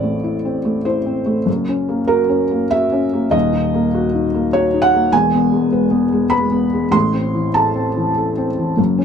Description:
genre	neoclassical minimalist piano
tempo	98 BPM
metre	3/4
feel	rubato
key	unclear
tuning	A4 = 440 Hz
part	felt-muted upright piano	solo	0.0-9.0 s	D#1 to C6	-14 LUFS	equal	none
room	light reverb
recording	dark, warm production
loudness	-14 LUFS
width	side -7 dB against mid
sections	0.0-9.0 A section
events	none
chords	0.0 Am; 1.5 F#; 3.3 D#m; 5.1 E; 6.9 Am

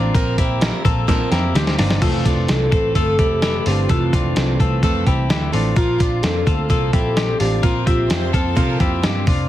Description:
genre	jangly indie pop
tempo	128 BPM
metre	4/4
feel	straight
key	F major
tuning	A4 = 440 Hz
part	picked plugged-in steel-string acoustic guitar	accompaniment	0.0-9.5 s	F2 to Bb4	-24 LUFS	right 4 dB	none
part	twelve-string electric guitar	arpeggios	0.0-9.5 s	C4 to E5	-25 LUFS	left 6 dB	none
part	vintage muted picked electric bass	bass	0.0-9.5 s	F1 to C3	-21 LUFS	equal	none
part	dusty soul sampler-style drum kit	drums	0.1-9.4 s	crash cymbal, hi-hat, kick drum, snare drum	-20 LUFS	equal	none
part	warm velvety synth lead	melody	2.0-8.6 s	F4 to A4	-23 LUFS	equal	chorus
part	rich studio violin section	second line	8.1-9.4 s	F4 to C5	-30 LUFS	right 1 dB	none
room	light reverb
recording	heavily compressed radio sound, multiband compression, vinyl crackle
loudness	-15 LUFS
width	side -13 dB against mid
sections	0.0-2.0 A section; 2.0-9.5 B section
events	drum fill 1.1-2.0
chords	0.0 Bbsus2; 2.0 Fmaj7; 5.8 Bbsus2

